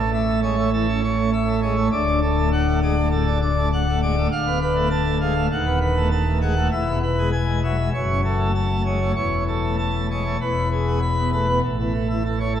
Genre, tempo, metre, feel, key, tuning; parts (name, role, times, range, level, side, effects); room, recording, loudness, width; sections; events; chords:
classical, organ toccata; 100 BPM; 4/4; straight; A major; A4 = 444 Hz
pipe organ, plenum; solo; 0.0-12.6 s; D1 to B5; -19 LUFS; equal
wet church reverb, RT60 3.2 s; worn, warbling old tape, cassette tape, warbly pitch drift; -19 LUFS; side -9 dB against mid
0.0-11.6 A section
0.0 A; 1.9 D; 4.3 Bm7b5/D; 5.5 B7/D#; 6.7 E; 7.9 F#m; 9.2 A/E; 10.4 E; 11.6 A